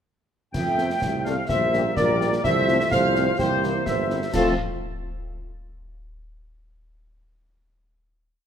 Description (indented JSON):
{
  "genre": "military-style march for wind band",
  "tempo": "126 BPM",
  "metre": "2/4",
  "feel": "straight",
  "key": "F major",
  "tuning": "A4 = 440 Hz",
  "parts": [
    { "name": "dark trumpet section", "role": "melody", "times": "0.5-4.5 s", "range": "C5 to A5", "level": "-27 LUFS", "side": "equal", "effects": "none" },
    { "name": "clear woodwind section", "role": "second line", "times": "0.5-4.5 s", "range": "A4 to G5", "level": "-27 LUFS", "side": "left 1 dB", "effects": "none" },
    { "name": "mellow flute section", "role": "second line", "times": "0.5-4.6 s", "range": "G4 to F5", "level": "-28 LUFS", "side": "left 1 dB", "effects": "none" },
    { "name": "dark trombone section", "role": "sustained chords", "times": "0.5-4.5 s", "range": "E3 to C4", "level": "-31 LUFS", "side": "right 3 dB", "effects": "none" },
    { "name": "warm tuba", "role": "bass", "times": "0.5-4.5 s", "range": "G1 to F2", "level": "-26 LUFS", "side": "right 4 dB", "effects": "none" },
    { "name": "concert snare drum, clash cymbals and concert bass drum", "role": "drums", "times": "0.5-4.6 s", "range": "none", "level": "-31 LUFS", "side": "left 1 dB", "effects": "none" },
    { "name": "warm French horn section", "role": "accompaniment", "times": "0.8-4.5 s", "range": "A3 to A4", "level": "-30 LUFS", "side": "left 4 dB", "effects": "none" }
  ],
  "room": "moderate scoring stage reverb, RT60 1.9 s",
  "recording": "none",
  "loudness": "-20 LUFS",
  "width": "side -8 dB against mid",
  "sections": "0.5-4.3 A section; 4.3-5.3 final chord",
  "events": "none",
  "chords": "0.5 F; 1.5 Gm/Bb; 2.4 F/C; 3.4 C7; 4.3 F"
}